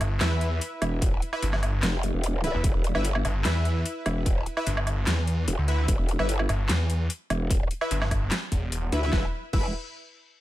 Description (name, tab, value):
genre	heavy wobble dubstep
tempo	148 BPM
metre	4/4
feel	half-time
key	E phrygian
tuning	A4 = 438 Hz
part	snarling distorted saw bass	bass	0.0-8.9 s	E1 to E2	-25 LUFS	equal	distortion, overdrive
part	dubstep drum kit	drums	0.0-9.6 s	crash cymbal, handclaps, hi-hat, snare drum, woodblock	-31 LUFS	equal	small room ambience
part	supersaw stab	stabs	0.2-9.7 s	E4 to E5	-33 LUFS	equal	cassette tape, digital delay
part	growl bass	bass	0.8-9.7 s	E1 to D2	-26 LUFS	equal	chorus, overdrive
part	electronic kick drum	drums	1.0-9.6 s	none	-26 LUFS	equal	small room ambience
room	digital ambience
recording	none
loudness	-24 LUFS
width	side -15 dB against mid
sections	0.0-9.1 A section; 9.1-10.4 B section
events	drop 0.0-9.1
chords	0.0 E5